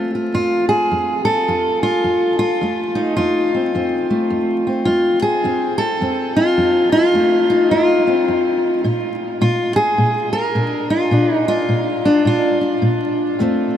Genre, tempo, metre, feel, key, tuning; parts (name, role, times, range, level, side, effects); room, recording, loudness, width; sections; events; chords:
acoustic country blues, solo or duo; 106 BPM; 4/4; swing 63% on 8ths; F mixolydian; A4 = 443 Hz
fingerpicked steel-string acoustic guitar; solo; 0.0-13.8 s; F2 to Bb4; -15 LUFS; equal
wet huge ambient reverb, RT60 7.8 s; in a vast, echoing space, vinyl crackle; -15 LUFS; side -10 dB against mid
0.0-13.8 A section
0.0 F; 8.8 Bb